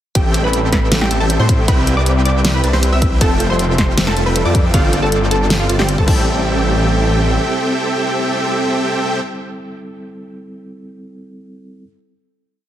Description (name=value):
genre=future bass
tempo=157 BPM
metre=4/4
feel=half-time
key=A minor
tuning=A4 = 439 Hz
part: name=wide unison pluck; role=melody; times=0.2-9.2 s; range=F4 to E6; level=-21 LUFS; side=equal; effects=cassette tape, sidechain pumping, tape echo
part: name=dense compressed supersaw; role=riff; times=0.2-9.2 s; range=C4 to A5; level=-19 LUFS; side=right 1 dB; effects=sidechain pumping, tape echo
part: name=wide detuned saw bass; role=bass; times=0.2-7.4 s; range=F1 to A2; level=-16 LUFS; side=equal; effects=chorus, sidechain pumping
part: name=electronic kick drum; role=drums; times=0.2-6.2 s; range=none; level=-15 LUFS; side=equal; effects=none
part: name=pop drum kit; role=drums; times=0.2-6.2 s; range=crash cymbal, hi-hat, snare drum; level=-19 LUFS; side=equal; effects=none
part: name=overdriven tine electric piano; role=accompaniment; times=0.4-11.8 s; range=G3 to E5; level=-26 LUFS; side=left 1 dB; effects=fast tremolo, vintage 12-bit sampler grit, sidechain pumping, tape echo
room=light reverb, digital ambience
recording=heavily compressed radio sound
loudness=-13 LUFS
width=side -11 dB against mid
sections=0.2-6.3 drop; 6.3-9.3 final hit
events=drop 0.2-6.3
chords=0.2 Am7; 1.7 Cmaj7; 3.2 Fmaj9; 4.7 G9sus4; 6.1 Am7